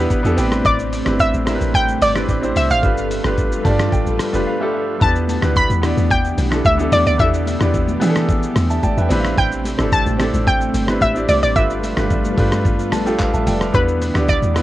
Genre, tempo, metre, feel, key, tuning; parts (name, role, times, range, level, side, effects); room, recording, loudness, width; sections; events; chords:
amapiano; 110 BPM; 4/4; straight; A minor; A4 = 440 Hz
analog pluck; melody; 0.0-14.6 s; B4 to B5; -19 LUFS; equal; chorus, cassette tape, tape echo
bright concert grand piano; accompaniment; 0.0-14.6 s; A3 to B5; -21 LUFS; right 1 dB; cassette tape
string machine, cellos; sustained chords; 0.0-14.6 s; E3 to B4; -24 LUFS; equal; ensemble chorus, sidechain pumping, cassette tape
deep log drum bass; bass; 0.0-14.6 s; F1 to E3; -20 LUFS; equal
dusty soul sampler-style drum kit; drums; 0.1-14.6 s; handclaps, hi-hat, kick drum, rim click, shaker; -21 LUFS; equal; cassette tape
congas; percussion; 5.0-14.5 s; -28 LUFS; left 2 dB
light reverb; home recording on cassette; -15 LUFS; side -15 dB against mid
0.0-14.6 A section
grand piano fill 0.0-0.6, 3.4-5.0, 8.6-9.4, 12.6-13.7; drums muted 4.5-5.0
0.4 Am11; 2.8 G9; 5.0 Em7; 9.1 Am11; 11.6 G9; 13.7 Em7